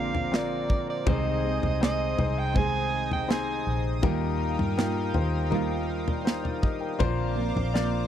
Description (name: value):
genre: pop ballad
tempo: 81 BPM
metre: 4/4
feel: straight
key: Eb major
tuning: A4 = 440 Hz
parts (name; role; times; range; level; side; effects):
- warm soprano saxophone; melody; 0.0-3.9 s; D5 to Ab5; -30 LUFS; right 4 dB; none
- clear baby grand piano; accompaniment; 0.0-8.1 s; Bb2 to G5; -31 LUFS; left 9 dB; none
- chorused pulse-width pad; sustained chords; 0.0-8.1 s; Bb4 to Eb6; -36 LUFS; right 1 dB; none
- nylon-string guitar; arpeggios; 0.0-8.1 s; Bb2 to Ab4; -34 LUFS; right 8 dB; none
- vintage muted fingered electric bass; bass; 0.0-8.1 s; Bb1 to G2; -30 LUFS; equal; none
- modern studio drum kit; drums; 0.1-7.9 s; kick drum, snare drum, toms; -28 LUFS; equal; none
room: small room ambience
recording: dry, close 1970s-style studio recording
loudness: -24 LUFS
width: side -10 dB against mid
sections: 0.0-8.1 A section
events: none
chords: 0.0 Bbadd9; 1.1 Ab/C; 4.0 Ebadd9; 7.0 Bbadd9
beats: 0.33 | 1.07 1.82 2.56 3.30 | 4.04 4.77 5.51 6.26 | 7.00 7.75